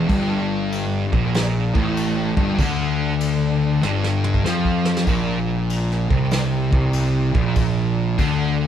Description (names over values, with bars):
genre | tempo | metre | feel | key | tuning
stoner and doom metal | 96 BPM | 4/4 | swing 66% on 8ths | unclear | A4 = 440 Hz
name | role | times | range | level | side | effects
thick fuzz guitar | riff | 0.0-8.7 s | G2 to F3 | -22 LUFS | left 6 dB | distortion
thick fuzz guitar | riff | 0.0-8.7 s | G2 to F3 | -24 LUFS | right 6 dB | distortion
fuzz picked electric bass | bass | 0.0-8.7 s | G1 to F2 | -24 LUFS | equal | overdrive
soft brush drum kit | drums | 0.1-8.4 s | crash cymbal, kick drum, snare drum, toms | -24 LUFS | equal | none
room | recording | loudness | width
moderate studio reverb, RT60 0.7 s | band playing live in one room | -18 LUFS | side -9 dB against mid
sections
0.0-8.7 A section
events
drum fill 3.8-5.1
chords
0.1 G5; 5.1 Bb5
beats
| 0.09 0.71 1.34 1.96 | 2.58 3.20 3.83 4.45 | 5.07 5.69 6.32 6.94 | 7.56 8.19